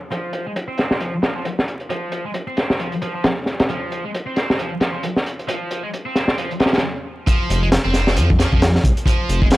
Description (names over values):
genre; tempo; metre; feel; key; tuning
breakbeat, breaks; 134 BPM; 4/4; swing 57% on 16ths; F minor; A4 = 439 Hz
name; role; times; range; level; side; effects
high-gain distorted guitar; riff; 0.1-9.5 s; F3 to C4; -25 LUFS; right 1 dB; distortion, vintage 12-bit sampler grit, low-pass filter, analog delay
crunchy breakbeat drum kit; drums; 0.1-9.6 s; hi-hat, kick drum, snare drum; -19 LUFS; equal; low-pass filter on kick, low-pass filter on hats, low-pass filter on snare, low-pass filter on room
dark detuned saw bass; bass; 7.5-9.6 s; F1 to F2; -18 LUFS; equal; tube saturation
room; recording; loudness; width
small room ambience; dry, gritty hardware recording, vinyl crackle; -18 LUFS; side -17 dB against mid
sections
0.0-7.3 A section; 7.3-9.6 B section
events
break 6.8-7.3; drop 7.3-9.6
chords
0.0 F5